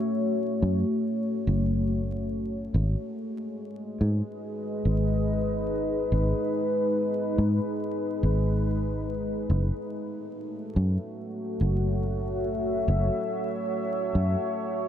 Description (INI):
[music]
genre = ambient dub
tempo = 71 BPM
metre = 4/4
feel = swing 54% on 16ths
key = F# dorian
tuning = A4 = 444 Hz
[part]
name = deep dark ambient pad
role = sustained chords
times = 0.0-14.9 s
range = G#3 to E5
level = -28 LUFS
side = left 1 dB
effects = chorus, built-in reverb
[part]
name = fingered electric bass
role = bass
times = 0.6-14.4 s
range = F#1 to G#2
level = -25 LUFS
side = equal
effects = none
[sound]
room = moderate lush hall reverb, RT60 2.7 s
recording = vinyl crackle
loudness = -25 LUFS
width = side -10 dB against mid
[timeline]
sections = 0.0-14.9 A section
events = none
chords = 0.0 F#m7; 2.7 G#m; 9.5 F#m7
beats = 0.20 1.05 1.90 | 2.74 3.58 4.43 5.28 | 6.12 6.97 7.81 8.66 | 9.50 10.35 11.19 12.04 | 12.88 13.73 14.57